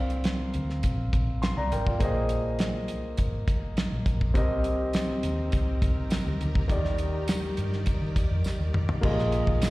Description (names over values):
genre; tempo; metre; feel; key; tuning
lush 1970s-style soul; 102 BPM; 4/4; straight; unclear; A4 = 440 Hz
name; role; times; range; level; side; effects
warm concert grand piano; accompaniment; 0.0-9.7 s; Eb3 to C6; -31 LUFS; equal; slapback echo
vintage muted fingered electric bass; bass; 0.0-9.7 s; Ab1 to Eb3; -29 LUFS; equal; none
damped 70s drum kit; drums; 0.1-9.7 s; crash cymbal, hi-hat, kick drum, snare drum, toms; -27 LUFS; equal; none
string machine, violins; sustained chords; 4.3-9.7 s; Eb3 to D5; -39 LUFS; equal; ensemble chorus
tambourine; percussion; 4.9-9.7 s; none; -46 LUFS; right 1 dB; none
room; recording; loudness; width
small room ambience; live gig heard through the venue's PA, recital hall reverb; -24 LUFS; side -19 dB against mid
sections
0.0-9.0 A section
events
drum fill 8.4-9.0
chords
0.0 C9sus4; 2.0 Bb9sus4; 4.3 Cm7; 6.7 Ebmaj7; 9.0 Bb7sus4